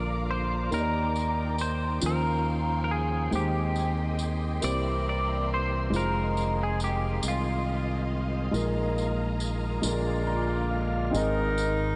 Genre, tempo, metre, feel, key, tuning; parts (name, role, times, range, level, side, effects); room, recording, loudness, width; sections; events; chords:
slow gospel; 46 BPM (dotted quarters); 6/8; straight; Eb major; A4 = 440 Hz
clean electric guitar; melody; 0.0-10.3 s; F4 to D5; -34 LUFS; equal; analog chorus, analog delay
warm grand piano; accompaniment; 0.0-12.0 s; Ab2 to Bb5; -35 LUFS; equal
bright tonewheel organ; sustained chords; 0.0-11.1 s; D3 to G5; -40 LUFS; equal; slow rotary speaker, overdrive, chorus vibrato
warm studio string section; sustained chords; 0.0-11.1 s; Eb4 to D6; -43 LUFS; equal
modern bright fingered electric bass; bass; 0.0-12.0 s; F1 to Eb2; -32 LUFS; equal
tambourine; percussion; 0.7-12.0 s; -44 LUFS; equal
warm horn section; melody; 9.9-12.0 s; Ab3 to Bb4; -32 LUFS; equal; analog delay
moderate huge ambient reverb, RT60 4.7 s; dreamy mix soaked in reverb, nothing above 10.7 kHz; -28 LUFS; mono
0.0-11.1 A section
grand piano fill 9.8-11.1; tonewheel organ fill 9.8-11.1
0.0 Bb; 0.7 Ebmaj7; 2.0 Eb13; 3.3 Abmaj7/Eb; 4.6 C7; 5.9 Fm7; 8.5 Bb7sus4; 9.8 Bb7; 11.1 Ab